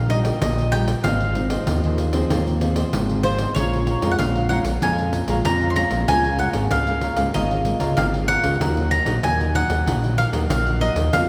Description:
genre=samba and choro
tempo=95 BPM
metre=4/4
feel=straight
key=Bb minor from 3.6 s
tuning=A4 = 440 Hz
part: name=bowl-back mandolin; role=melody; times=0.0-11.3 s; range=C5 to C6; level=-26 LUFS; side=equal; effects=none
part: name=nylon-string guitar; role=accompaniment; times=0.0-11.3 s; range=F2 to F4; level=-30 LUFS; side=equal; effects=none
part: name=fat analog bass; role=bass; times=0.0-11.3 s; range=Ab1 to F2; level=-24 LUFS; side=equal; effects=none
part: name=cavaquinho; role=accompaniment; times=0.1-11.3 s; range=F4 to Bb5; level=-32 LUFS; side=equal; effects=none
part: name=pandeiro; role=percussion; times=0.1-11.3 s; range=none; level=-28 LUFS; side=equal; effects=none
room=wet scoring stage reverb, RT60 2.2 s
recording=recorded in a church or concert hall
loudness=-21 LUFS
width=mono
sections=0.0-3.6 A section; 3.6-11.3 B section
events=none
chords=0.0 Eb; 1.0 Ab6; 3.6 Bbm7; 6.1 Db6; 8.6 Ebm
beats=0.41 | 1.04 1.67 2.30 2.93 | 3.56 4.19 4.82 5.45 | 6.08 6.71 7.34 7.97 | 8.61 9.23 9.87 10.50 | 11.13

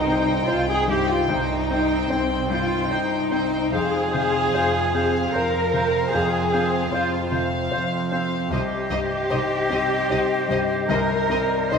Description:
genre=cinematic, emotional film score for orchestra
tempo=75 BPM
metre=3/4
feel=rubato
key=C minor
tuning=A4 = 440 Hz
part: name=warm studio violin section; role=melody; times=0.0-11.8 s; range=Eb5 to G5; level=-30 LUFS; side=left 3 dB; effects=none
part: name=mellow clarinet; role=second line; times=0.0-11.8 s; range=C4 to C5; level=-32 LUFS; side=equal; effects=none
part: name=warm studio violin section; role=second line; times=0.0-11.8 s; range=C5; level=-34 LUFS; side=equal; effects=none
part: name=dark symphonic viola section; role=accompaniment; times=0.0-11.8 s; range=C4 to Eb4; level=-37 LUFS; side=right 2 dB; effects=none
part: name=warm concert grand piano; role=accompaniment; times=0.0-11.8 s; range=C2 to C5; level=-28 LUFS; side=left 4 dB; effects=none
part: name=mellow French horn section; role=sustained chords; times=0.0-11.8 s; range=C4 to C5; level=-29 LUFS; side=left 5 dB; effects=none
part: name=concert harp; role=arpeggios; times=0.0-11.8 s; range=C3 to F5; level=-32 LUFS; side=left 6 dB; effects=none
part: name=dark symphonic cello section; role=bass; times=0.0-11.8 s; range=C4 to C5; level=-25 LUFS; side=right 2 dB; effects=none
part: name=rich chamber double bass section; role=bass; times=0.0-11.8 s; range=C2 to F2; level=-30 LUFS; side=right 4 dB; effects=none
part: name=clear oboe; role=second line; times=0.1-11.8 s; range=C5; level=-31 LUFS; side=right 1 dB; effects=none
part: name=mellow hollow concert flute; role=second line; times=0.1-11.8 s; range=Eb5 to G5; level=-32 LUFS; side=left 2 dB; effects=none
room=wet scoring stage reverb, RT60 2.0 s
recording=minimal, uncompressed stereo recording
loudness=-20 LUFS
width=side -6 dB against mid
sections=0.0-11.8 A section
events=none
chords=0.0 Cm; 3.7 Fm; 8.5 Cm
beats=0.48 | 1.30 2.10 2.90 | 3.73 4.54 5.34 | 6.13 6.93 7.73 | 8.52 9.31 10.10 | 10.91 11.71

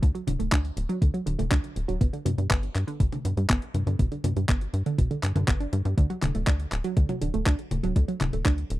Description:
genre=italo disco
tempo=121 BPM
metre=4/4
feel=straight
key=D major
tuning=A4 = 440 Hz
part: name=wide unison pluck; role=arpeggios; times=0.0-8.6 s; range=B2 to D4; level=-31 LUFS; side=right 3 dB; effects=cassette tape, tape echo
part: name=tight sequencer bass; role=bass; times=0.0-8.8 s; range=D1 to G2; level=-27 LUFS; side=equal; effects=none
part: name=clean 12-bit digital drum machine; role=drums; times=0.0-8.8 s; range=handclaps, hi-hat, toms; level=-31 LUFS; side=left 2 dB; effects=none
part: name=electronic kick drum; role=drums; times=0.0-8.6 s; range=none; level=-24 LUFS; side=equal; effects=none
room=little or no reverb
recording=dry, close 1970s-style studio recording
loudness=-24 LUFS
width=side -16 dB against mid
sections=0.0-8.8 A section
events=none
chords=0.0 D; 2.0 G; 6.0 D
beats=| 0.03 0.52 1.02 1.51 | 2.01 2.51 3.00 3.50 | 3.99 4.49 4.99 5.48 | 5.98 6.47 6.97 7.46 | 7.96 8.46

